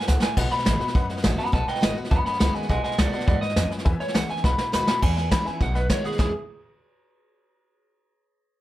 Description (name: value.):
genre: rockabilly.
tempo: 206 BPM.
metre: 4/4.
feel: straight.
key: E major.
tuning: A4 = 440 Hz.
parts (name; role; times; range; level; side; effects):
electric guitar through a small old amp; melody; 0.0-6.3 s; G#4 to B5; -27 LUFS; equal; analog delay.
honky-tonk upright piano; accompaniment; 0.0-6.3 s; B4 to B5; -36 LUFS; left 3 dB; none.
picked steel-string acoustic guitar; accompaniment; 0.0-6.3 s; E2 to F#4; -31 LUFS; left 2 dB; none.
vintage brush drum kit; drums; 0.0-6.3 s; crash cymbal, hi-hat, kick drum, snare drum; -24 LUFS; equal; none.
upright bass; bass; 0.1-6.3 s; G#1 to F2; -26 LUFS; equal; none.
room: light reverb.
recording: none.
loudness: -21 LUFS.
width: side -15 dB against mid.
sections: 0.0-5.0 A section; 5.0-6.2 B section; 6.2-7.4 C section.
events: drum fill 0.1, 4.4-5.0.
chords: 0.4 B6; 3.9 E6; 4.4 B6; 5.0 E6; 5.6 B6; 6.2 E.